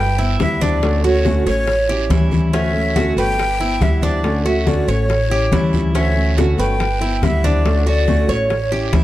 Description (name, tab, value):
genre	latin, Cuban son and guajira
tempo	141 BPM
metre	4/4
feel	straight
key	D major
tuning	A4 = 439 Hz
part	breathy jazz flute	melody	0.0-8.9 s	C#5 to G5	-22 LUFS	left 2 dB	none
part	Cuban tres	arpeggios	0.0-9.0 s	C#4 to C#5	-23 LUFS	right 3 dB	none
part	upright bass	bass	0.0-9.0 s	G1 to D2	-19 LUFS	right 1 dB	none
part	fingerpicked steel-string acoustic guitar	accompaniment	0.2-9.0 s	D3 to F#4	-21 LUFS	left 2 dB	none
part	congas	percussion	0.2-9.0 s	none	-24 LUFS	left 2 dB	none
part	bongos	percussion	0.4-9.0 s	none	-26 LUFS	left 5 dB	none
part	guiro	percussion	0.4-9.0 s	none	-34 LUFS	right 7 dB	none
room	light reverb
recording	dark, warm production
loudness	-14 LUFS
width	side -14 dB against mid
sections	0.0-9.0 A section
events	none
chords	0.0 G6; 0.8 Dmaj7; 1.7 A7; 2.5 Dmaj9; 3.4 G6; 4.2 Dmaj7; 5.1 A7; 5.9 Dmaj9; 6.8 G6; 7.7 Dmaj7; 8.5 A7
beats	0.40 | 0.82 1.25 1.68 2.10 | 2.53 2.96 3.38 3.81 | 4.24 4.67 5.09 5.52 | 5.95 6.37 6.80 7.23 | 7.65 8.08 8.51 8.94